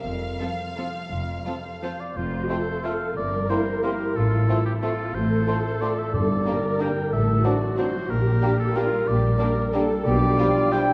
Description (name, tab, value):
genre	classical, orchestral ballroom waltz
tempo	161-199 BPM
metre	3/4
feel	rubato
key	F major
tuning	A4 = 438 Hz
part	warm symphonic violin section	melody	0.0-10.8 s	E4 to F5	-41 LUFS	equal	none
part	concert harp	arpeggios	0.0-10.9 s	G2 to C5	-33 LUFS	equal	none
part	rich symphonic double bass section	bass	0.0-10.3 s	F1 to B1	-30 LUFS	equal	none
part	warm symphonic cello section	bass	0.1-10.3 s	F2 to B2	-31 LUFS	equal	none
part	rich symphonic violin section	second line	0.4-10.8 s	G3 to A4	-38 LUFS	equal	none
part	dark symphonic viola section	accompaniment	0.4-10.9 s	F3 to Bb4	-32 LUFS	equal	none
part	warm oboe	second line	1.8-10.9 s	G4 to G5	-32 LUFS	equal	none
part	bright large flute ensemble	second line	2.5-10.9 s	G5 to C6	-36 LUFS	equal	none
part	dark clarinet	second line	2.5-10.9 s	D4 to F4	-36 LUFS	equal	none
part	clear bassoon	accompaniment	2.5-10.9 s	F#3 to Bb3	-36 LUFS	equal	none
part	dark French horn section	sustained chords	2.5-10.8 s	F3 to G4	-34 LUFS	equal	none
part	timpani	percussion	6.1-6.6 s	G2	-36 LUFS	equal	none
room	wet scoring stage reverb, RT60 2.0 s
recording	heard from further back in the room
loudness	-24 LUFS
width	mono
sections	0.0-2.2 A section; 2.2-10.9 B section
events	none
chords	0.1 F; 3.2 C7/G; 4.2 F/A; 6.1 Gm; 7.1 D7/A; 8.1 Gm/Bb; 10.1 G7/B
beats	| 0.05 0.41 0.77 | 1.11 1.46 1.82 | 2.17 2.50 2.84 | 3.17 3.50 3.84 | 4.16 4.49 4.83 | 5.15 5.47 5.82 | 6.14 6.46 6.80 | 7.12 7.44 7.78 | 8.10 8.42 8.76 | 9.08 9.40 9.74 | 10.06 10.38 10.72